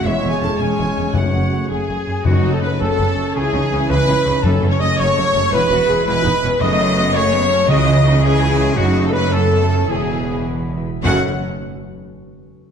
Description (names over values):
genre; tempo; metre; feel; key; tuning
cinematic, heroic adventure film score; 110 BPM (dotted quarters); 6/8; straight; F# dorian; A4 = 439 Hz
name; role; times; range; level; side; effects
rich symphonic violin section; melody; 0.0-11.3 s; F#4 to A5; -28 LUFS; left 3 dB; none
silver concert flute; second line; 0.0-11.3 s; E5 to D#6; -27 LUFS; left 3 dB; none
warm clarinet; second line; 0.0-11.2 s; G#3 to D#5; -28 LUFS; left 1 dB; none
warm symphonic violin section; second line; 0.0-11.3 s; F#4 to A5; -28 LUFS; equal; none
rich symphonic viola section; accompaniment; 0.0-11.3 s; G#3 to A4; -27 LUFS; equal; none
dark French horn section; sustained chords; 0.0-11.2 s; E4 to D#5; -22 LUFS; left 2 dB; none
warm trombone section; sustained chords; 0.0-11.2 s; B2 to C#4; -27 LUFS; right 3 dB; none
concert harp; arpeggios; 0.0-11.3 s; E2 to C#6; -28 LUFS; left 8 dB; none
rich symphonic cello section; bass; 0.0-11.3 s; E2 to C#3; -23 LUFS; right 2 dB; none
clear trumpet section; stabs; 0.1-11.2 s; F#4 to F#5; -24 LUFS; right 1 dB; none
rich symphonic double bass section; bass; 0.1-11.3 s; E1 to C#2; -22 LUFS; right 3 dB; none
timpani; percussion; 1.1-8.2, 11.0-11.2 s; F#2 to C#3; -21 LUFS; left 1 dB; none
room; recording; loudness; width
wet scoring stage reverb, RT60 1.6 s; dark, warm production; -14 LUFS; side -7 dB against mid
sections
0.0-2.3 A section; 2.3-11.1 B section; 11.1-12.2 C section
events
slowing down 8.2-11.1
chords
0.1 C#m/E; 1.2 F#m; 3.4 C#madd9; 4.4 F#m; 5.5 E; 6.6 F#m; 7.7 C#madd9; 8.8 F#m; 9.9 E; 11.1 F#m